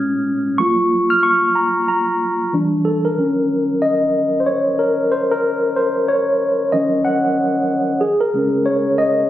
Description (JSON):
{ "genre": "R&B", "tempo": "93 BPM", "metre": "4/4", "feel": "swing 61% on 16ths", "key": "unclear", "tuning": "A4 = 439 Hz", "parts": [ { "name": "mellow tine electric piano", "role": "solo", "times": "0.0-9.3 s", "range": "Bb2 to Ab6", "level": "-15 LUFS", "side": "equal", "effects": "fast stereo tremolo" } ], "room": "light reverb", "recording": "recorded on a phone in the room, studio reverb", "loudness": "-15 LUFS", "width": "side -13 dB against mid", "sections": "0.0-3.2 A section; 3.2-9.3 B section", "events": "tine electric piano solo 0.0-3.2, 3.2-9.3", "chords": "0.0 Bbm7; 0.6 Gbmaj7; 2.5 Em7; 3.2 Ebm7; 8.0 Bbm11/Db" }